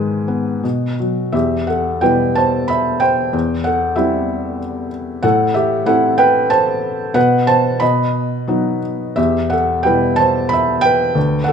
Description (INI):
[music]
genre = classical, lyrical solo piano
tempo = 84-96 BPM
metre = 3/4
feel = rubato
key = E minor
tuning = A4 = 440 Hz
[part]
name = felt-muted upright piano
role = solo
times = 0.0-11.5 s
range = D2 to B5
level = -14 LUFS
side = equal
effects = none
[sound]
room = moderate recital hall reverb, RT60 1.5 s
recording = minimal, uncompressed stereo recording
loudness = -14 LUFS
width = side -7 dB against mid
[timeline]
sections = 0.0-1.3 A section; 1.3-11.5 B section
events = none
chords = 0.0 G#m; 0.6 B5; 1.3 Em; 3.3 C/E; 5.2 Am; 7.2 B5; 7.8 B; 9.2 Em